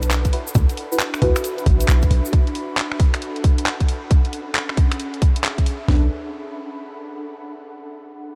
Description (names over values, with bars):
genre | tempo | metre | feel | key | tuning
UK garage, two-step garage | 135 BPM | 4/4 | swing 64% on 16ths | B dorian | A4 = 441 Hz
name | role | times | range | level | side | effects
short 808-style bass | bass | 0.0-2.2, 5.9-6.1 s | A1 to D2 | -19 LUFS | equal | sidechain pumping
garage drum kit | drums | 0.0-5.8 s | finger snaps, handclaps, hi-hat | -28 LUFS | equal | none
egg shaker | percussion | 0.0-2.3 s | none | -36 LUFS | equal | none
ethereal airy pad | texture | 0.0-7.6 s | C#4 to B5 | -34 LUFS | equal | ensemble chorus, built-in reverb, sidechain pumping
garage drum kit | drums | 0.2-6.0 s | kick drum, snare drum, toms | -19 LUFS | equal | none
deep mellow chord stab | stabs | 0.3-2.1, 5.9-6.1 s | D4 to B4 | -31 LUFS | equal | chorus, phaser, vintage 12-bit sampler grit, diffuse ambient delay
room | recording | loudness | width
light reverb, digital ambience | none | -19 LUFS | mono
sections
0.0-5.9 A section; 5.9-7.7 B section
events
none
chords
0.3 D69; 2.1 Bm7; 3.9 C#m7; 5.9 Bm7